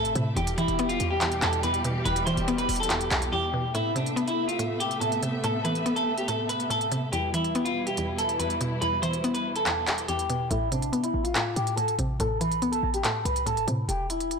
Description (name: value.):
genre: hip hop, trap.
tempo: 142 BPM.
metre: 4/4.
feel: half-time.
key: A minor.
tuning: A4 = 440 Hz.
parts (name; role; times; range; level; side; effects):
semi-hollow electric guitar; melody; 0.0-14.4 s; D4 to C5; -28 LUFS; equal; wide subtle chorus, low-pass filter.
mallet-like synth pluck; accompaniment; 0.0-13.9 s; E2 to B3; -30 LUFS; left 1 dB; chorus, low-pass filter.
warm studio string section; sustained chords; 0.0-10.5 s; B2 to E5; -33 LUFS; right 1 dB; none.
short 808-style bass; bass; 0.0-3.3, 10.5-14.4 s; E1 to A2; -31 LUFS; equal; none.
trap drum kit; drums; 0.0-14.4 s; handclaps, hi-hat; -30 LUFS; equal; none.
room: light reverb, digital ambience.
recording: blown-out, overdriven recording, overdrive.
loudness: -24 LUFS.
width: side -5 dB against mid.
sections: 0.0-3.7 A section; 3.7-10.5 B section; 10.5-14.4 C section.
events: break 3.3-3.7, 13.9-14.4; kick muted 9.7-10.5.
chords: 0.4 Em; 3.7 Amadd9; 7.1 Em; 10.5 Amadd9; 13.9 Em.